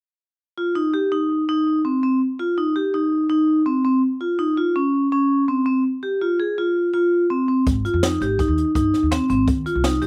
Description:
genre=progressive instrumental, band music in an uneven meter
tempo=165 BPM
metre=5/4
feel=straight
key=unclear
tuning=A4 = 440 Hz
part: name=vibraphone with medium hard mallets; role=arpeggios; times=0.6-10.1 s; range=C4 to Ab4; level=-21 LUFS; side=equal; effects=none
part: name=upright bass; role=bass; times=7.7-10.1 s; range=G1 to F2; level=-26 LUFS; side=equal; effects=none
part: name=jazz brush drum kit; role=drums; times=7.7-10.1 s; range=hi-hat, kick drum, snare drum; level=-26 LUFS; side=equal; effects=none
room=little or no reverb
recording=recorded outdoors, with no room sound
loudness=-20 LUFS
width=mono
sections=0.4-10.1 A section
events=none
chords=0.4 Cmadd11; 5.8 F5; 7.7 Abmaj7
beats=| 0.39 0.76 1.12 1.49 1.85 | 2.21 2.58 2.94 3.30 3.67 | 4.03 4.39 4.76 5.12 5.48 | 5.85 6.21 6.57 6.94 7.30 | 7.66 8.03 8.39 8.75 9.11 | 9.48 9.84

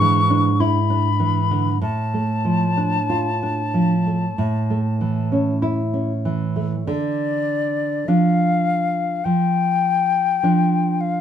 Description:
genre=romantic duo for flute and classical guitar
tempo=47-53 BPM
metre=4/4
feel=rubato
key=D minor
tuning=A4 = 440 Hz
part: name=mellow silver concert flute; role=melody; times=0.0-11.2 s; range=D5 to C#6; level=-22 LUFS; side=left 6 dB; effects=none
part: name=nylon-string guitar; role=accompaniment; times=0.0-11.2 s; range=G#2 to F4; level=-19 LUFS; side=right 2 dB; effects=none
room=moderate studio ambience, RT60 0.5 s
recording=none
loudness=-18 LUFS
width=side -9 dB against mid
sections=0.0-6.9 A section; 6.9-11.2 B section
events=none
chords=0.0 E7/G#; 1.8 Dm/A; 4.4 A; 6.9 Dm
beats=0.61 | 1.83 3.10 4.37 5.62 | 6.86 8.08 9.25 10.43

